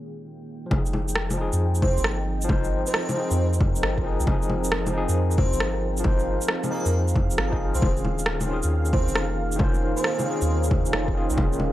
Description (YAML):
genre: future garage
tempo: 135 BPM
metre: 4/4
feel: swing 67% on 16ths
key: F minor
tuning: A4 = 440 Hz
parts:
  - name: overdriven tine electric piano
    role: accompaniment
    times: 0.0-11.7 s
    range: Eb3 to C5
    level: -30 LUFS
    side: left 2 dB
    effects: fast tremolo, sidechain pumping, tape echo
  - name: deep dark ambient pad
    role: sustained chords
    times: 0.0-11.7 s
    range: Bb3 to G5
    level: -31 LUFS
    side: right 1 dB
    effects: chorus, built-in reverb, sidechain pumping
  - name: soft dub sub bass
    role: bass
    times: 0.7-11.7 s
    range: Eb1 to F2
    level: -26 LUFS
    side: equal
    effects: transformer saturation, sidechain pumping
  - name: electronic bongos, shaker and rim click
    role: drums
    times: 0.7-11.7 s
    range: none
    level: -27 LUFS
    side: left 1 dB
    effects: none
  - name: electronic kick drum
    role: drums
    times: 0.7-11.5 s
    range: none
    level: -25 LUFS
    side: equal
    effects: none
  - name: airy dreamy lead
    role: melody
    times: 1.8-10.6 s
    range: Bb4 to C5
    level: -33 LUFS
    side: equal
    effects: chorus, cassette tape, tape echo
room: little or no reverb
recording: dry, gritty hardware recording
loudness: -21 LUFS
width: side -14 dB against mid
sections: 0.7-11.7 A section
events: none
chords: 0.0 Eb9sus4; 0.7 Fm7; 7.8 Eb9sus4